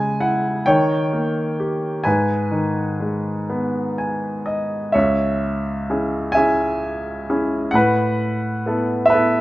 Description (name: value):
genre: classical, lyrical solo piano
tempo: 43 BPM (dotted quarters)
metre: 6/8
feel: rubato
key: G# minor, C# minor from 4.9 s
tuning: A4 = 441 Hz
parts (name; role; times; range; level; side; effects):
- warm grand piano; solo; 0.0-9.4 s; C#2 to G#5; -18 LUFS; equal; none
room: light reverb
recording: close, detailed microphones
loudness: -18 LUFS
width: side -17 dB against mid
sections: 0.0-4.9 A section; 4.9-9.4 B section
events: grand piano fill 3.5-4.9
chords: 0.0 C#m; 0.7 D#7; 2.1 G#m; 4.9 C#m; 7.7 Asus2